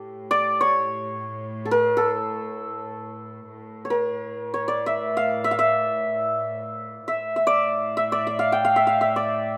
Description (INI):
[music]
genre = Persian modal ensemble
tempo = free time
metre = none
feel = none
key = A dastgah homayun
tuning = A4 = 438 Hz
[part]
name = santur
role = melody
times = 0.0-9.6 s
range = G4 to G5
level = -24 LUFS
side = equal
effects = none
[part]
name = warm chamber cello section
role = drone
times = 0.0-9.6 s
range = A2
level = -39 LUFS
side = equal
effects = none
[sound]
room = light reverb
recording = none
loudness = -23 LUFS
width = mono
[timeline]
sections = 0.0-3.5 A section; 3.5-9.6 A section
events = none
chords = none